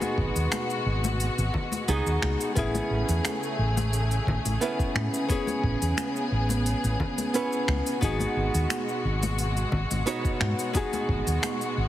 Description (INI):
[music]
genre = sunset chillout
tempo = 88 BPM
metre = 4/4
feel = swing 53% on 16ths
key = unclear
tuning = A4 = 440 Hz
[part]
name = nylon-string guitar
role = accompaniment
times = 0.0-11.9 s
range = B3 to C#5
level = -30 LUFS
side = moving between left 3 dB and right 4 dB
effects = auto-pan, tape echo
[part]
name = rich studio string section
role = sustained chords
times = 0.0-11.9 s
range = B2 to G#4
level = -31 LUFS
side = left 1 dB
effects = none
[part]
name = smooth R&B drum kit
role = drums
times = 0.0-11.7 s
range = finger snaps, hi-hat, shaker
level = -33 LUFS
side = equal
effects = studio reverb
[part]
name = congas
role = percussion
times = 0.0-11.6 s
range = none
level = -36 LUFS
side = left 4 dB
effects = none
[part]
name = fingered electric bass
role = bass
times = 0.2-11.9 s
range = G#1 to A2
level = -27 LUFS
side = equal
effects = tube saturation
[part]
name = electronic kick drum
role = drums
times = 0.2-11.2 s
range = none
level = -28 LUFS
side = equal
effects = overdrive, studio reverb
[sound]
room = light reverb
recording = heavily compressed radio sound, multiband compression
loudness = -24 LUFS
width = side -13 dB against mid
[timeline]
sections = 0.0-11.9 A section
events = none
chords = 0.0 G#m7; 2.6 Amaj7; 8.0 G#m7